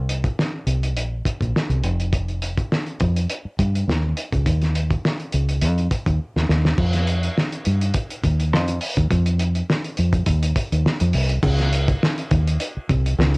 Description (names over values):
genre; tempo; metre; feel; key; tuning
lush 1970s-style soul; 103 BPM; 4/4; swing 54% on 16ths; unclear; A4 = 438 Hz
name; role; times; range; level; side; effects
fingered electric bass; bass; 0.0-13.4 s; F1 to G2; -19 LUFS; equal; none
cloth-damped thuddy drum kit; drums; 0.1-13.4 s; crash cymbal, hi-hat, kick drum, snare drum; -22 LUFS; equal; cassette tape
room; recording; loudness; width
little or no reverb; home recording on cassette; -18 LUFS; side -32 dB against mid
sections
0.0-6.8 A section; 6.8-11.4 B section; 11.4-13.4 C section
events
drum fill 6.2-6.8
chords
none